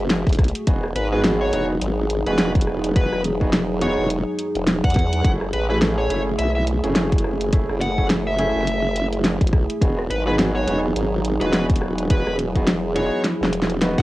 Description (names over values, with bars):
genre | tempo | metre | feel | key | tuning
glitch hop | 105 BPM | 4/4 | swing 58% on 16ths | unclear | A4 = 440 Hz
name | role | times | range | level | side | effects
dark analog pad | sustained chords | 0.0-14.0 s | F#3 to G#4 | -26 LUFS | right 1 dB | chorus, vintage 12-bit sampler grit, sidechain pumping, cassette tape
formant-sweep wobble bass | bass | 0.0-14.0 s | E1 to E2 | -24 LUFS | equal | chorus, tube saturation
pop drum kit | drums | 0.1-14.0 s | hi-hat, rim click, snare drum | -22 LUFS | equal | none
electronic kick drum | drums | 0.3-14.0 s | none | -18 LUFS | equal | none
clear concert grand piano | stabs | 0.7-14.0 s | A3 to B4 | -26 LUFS | right 1 dB | sidechain pumping, cassette tape
dark smooth lead guitar | melody | 1.0-14.0 s | B4 to F#5 | -27 LUFS | left 1 dB | overdrive, cassette tape, analog delay
room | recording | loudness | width
light reverb | home recording on cassette | -18 LUFS | side -17 dB against mid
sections
0.0-14.0 A section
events
drum fill 13.2-14.0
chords
0.0 F#m9; 0.7 Emaj9; 5.2 F#m9; 9.8 Emaj9